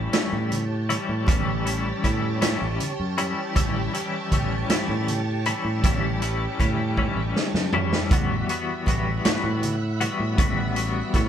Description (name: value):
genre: psychedelic rock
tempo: 53 BPM (dotted quarters)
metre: 6/8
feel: straight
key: A mixolydian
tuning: A4 = 440 Hz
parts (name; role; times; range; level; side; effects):
- string machine, violins; sustained chords; 0.0-11.3 s; G4 to B5; -33 LUFS; right 4 dB; ensemble chorus
- twelve-string electric guitar; riff; 0.0-11.3 s; E3 to F#4; -27 LUFS; left 4 dB; tremolo
- growling fingered electric bass; bass; 0.0-11.3 s; A1 to A2; -27 LUFS; equal; overdrive
- vintage drum kit; drums; 0.1-11.3 s; hi-hat, kick drum, snare drum, toms; -24 LUFS; right 1 dB; none
- congas; percussion; 0.1-11.3 s; none; -35 LUFS; right 1 dB; none
room: moderate studio ambience, RT60 0.5 s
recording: band playing live in one room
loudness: -22 LUFS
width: side -9 dB against mid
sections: 0.0-11.3 A section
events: drum fill 7.0-8.1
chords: 0.0 A7; 8.1 Emadd9/A